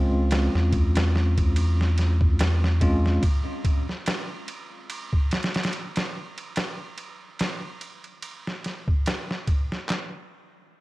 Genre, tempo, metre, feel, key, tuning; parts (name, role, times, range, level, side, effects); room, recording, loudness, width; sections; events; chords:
trip hop; 72 BPM; 4/4; swing 56% on 16ths; A4 = 442 Hz
bell-like tine electric piano; accompaniment; 0.0-3.2 s; Ab3 to F4; -28 LUFS; equal; tremolo, tape echo
round analog bass; bass; 0.0-3.2 s; Db2 to E2; -21 LUFS; equal
trip hop sampler-style drum kit; drums; 0.3-10.1 s; handclaps, kick drum, ride cymbal, snare drum; -26 LUFS; equal; studio reverb
digital ambience; dark, warm production; -22 LUFS; side -20 dB against mid
0.0-9.9 A section
0.0 Dbmaj7; 3.2 N.C.